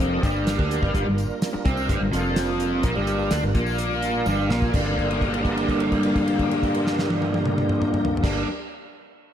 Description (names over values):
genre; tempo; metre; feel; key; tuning
psychedelic rock; 127 BPM; 4/4; straight; G minor; A4 = 444 Hz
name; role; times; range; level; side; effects
tonewheel organ; sustained chords; 0.0-8.4 s; G3 to Bb4; -30 LUFS; right 5 dB; slow rotary speaker, overdrive, chorus vibrato
overdriven electric guitar; riff; 0.0-8.5 s; F2 to D4; -23 LUFS; left 1 dB; rotary speaker
fingered electric bass; bass; 0.0-8.4 s; F1 to D2; -28 LUFS; equal; none
damped 70s drum kit; drums; 0.2-8.4 s; crash cymbal, hi-hat, kick drum, snare drum, toms; -27 LUFS; equal; none
tambourine; percussion; 0.2-5.0 s; none; -47 LUFS; left 4 dB; none
room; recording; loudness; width
moderate lush hall reverb, RT60 1.8 s, small room reverb; dreamy mix soaked in reverb; -20 LUFS; side -10 dB against mid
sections
0.0-4.7 A section; 4.7-8.5 B section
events
drum fill 4.3-4.7; held note 4.7-8.2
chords
0.0 Gm